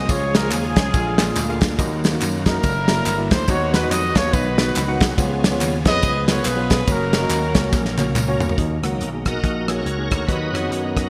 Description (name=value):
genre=uptempo gospel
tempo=141 BPM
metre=4/4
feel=swing 60% on 8ths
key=unclear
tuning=A4 = 439 Hz
part: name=warm horn section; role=melody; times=0.0-8.2 s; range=C#4 to D#5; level=-26 LUFS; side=equal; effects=delay
part: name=tine electric piano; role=accompaniment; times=0.0-11.1 s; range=A#2 to F#5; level=-28 LUFS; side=equal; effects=overdrive, lush chorus
part: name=bright tonewheel organ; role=sustained chords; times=0.0-11.1 s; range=D3 to D#5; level=-31 LUFS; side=equal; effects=slow rotary speaker, overdrive, chorus vibrato
part: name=vintage slap bass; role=bass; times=0.0-11.1 s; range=F#1 to F#2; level=-27 LUFS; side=equal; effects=none
part: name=warm soul drum kit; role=drums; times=0.1-11.1 s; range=hi-hat, kick drum, ride cymbal, rim click, snare drum, toms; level=-23 LUFS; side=equal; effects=gated reverb
part: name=tambourine and handclaps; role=percussion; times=0.1-8.5 s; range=none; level=-33 LUFS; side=equal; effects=none
room=moderate lush hall reverb, RT60 1.8 s, small room ambience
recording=bright 1980s-style digital production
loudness=-20 LUFS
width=mono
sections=0.0-8.6 A section; 8.6-11.1 B section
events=drum fill 7.7-8.6; tonewheel organ solo 8.6-11.1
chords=0.1 C#; 0.9 A#7; 1.8 D#m; 2.6 F#aug7; 3.5 B/D#; 5.2 C#7; 6.9 F#; 8.6 D#m; 10.3 B/D#